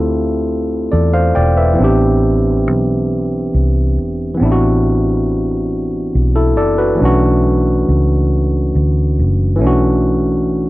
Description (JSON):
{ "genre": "slow six-eight R&B", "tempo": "46 BPM (dotted quarters)", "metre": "6/8", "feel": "straight", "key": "unclear", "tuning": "A4 = 440 Hz", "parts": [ { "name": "overdriven tine electric piano", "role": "accompaniment", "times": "0.0-10.7 s", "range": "E3 to G5", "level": "-15 LUFS", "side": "equal", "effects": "none" }, { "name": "vintage muted fingered electric bass", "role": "bass", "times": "0.0-10.7 s", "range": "E1 to E2", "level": "-16 LUFS", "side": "equal", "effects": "none" } ], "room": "little or no reverb", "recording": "dry, close 1970s-style studio recording", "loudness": "-12 LUFS", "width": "side -18 dB against mid", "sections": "0.0-10.7 A section", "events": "none", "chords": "0.0 Dm11; 1.8 Am11; 7.0 Bm11" }